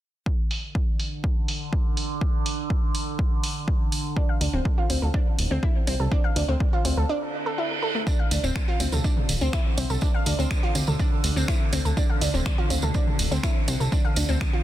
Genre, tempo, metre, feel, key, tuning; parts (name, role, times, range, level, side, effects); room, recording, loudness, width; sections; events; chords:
melodic techno; 123 BPM; 4/4; straight; D minor; A4 = 442 Hz
overtone-sweeping drone; drone; 0.7-14.6 s; D3; -34 LUFS; right 1 dB; chorus, built-in reverb, sidechain pumping
electronic kick drum; drums; 0.3-14.5 s; -24 LUFS; equal; overdrive
punchy analog drum machine; drums; 0.5-14.5 s; finger snaps, hi-hat, toms; -32 LUFS; right 1 dB; sidechain pumping on hats, low-pass filter on hats, soft clipping on snare, low-pass filter on snare, sidechain pumping on toms, low-pass filter on toms, low-pass filter on room
analog pluck; arpeggios; 4.2-14.6 s; A3 to F5; -29 LUFS; equal; chorus, sidechain pumping, tape echo
fat analog bass; bass; 4.4-14.4 s; D1 to D2; -24 LUFS; equal; sidechain pumping
reverse cymbal; sound effects; 7.3-8.1 s; -33 LUFS; right 5 dB
tambourine; percussion; 8.1-14.5 s; -34 LUFS; right 5 dB
little or no reverb; dense, heavily limited modern master; -22 LUFS; side -13 dB against mid
0.3-8.1 A section; 8.1-14.6 B section
break 7.1-8.1; reverse cymbal 7.3-8.1
0.3 N.C.; 8.1 Dm